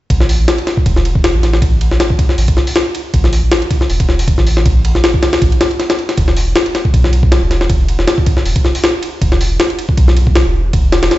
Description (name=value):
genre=drum and bass, jungle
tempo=158 BPM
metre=4/4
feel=swing 54% on 16ths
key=unclear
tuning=A4 = 442 Hz
part: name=soft dub sub bass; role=bass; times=0.1-11.1 s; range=E1 to B1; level=-13 LUFS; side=equal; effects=none
part: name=jungle sampler-style drum kit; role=drums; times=0.1-11.2 s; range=hi-hat, kick drum, ride cymbal, snare drum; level=-12 LUFS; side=equal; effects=small room ambience
room=light reverb, digital ambience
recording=played on a big sound system in a bare room, large studio reverb, nothing above 7.9 kHz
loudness=-10 LUFS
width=side -16 dB against mid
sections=0.1-11.2 A section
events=none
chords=none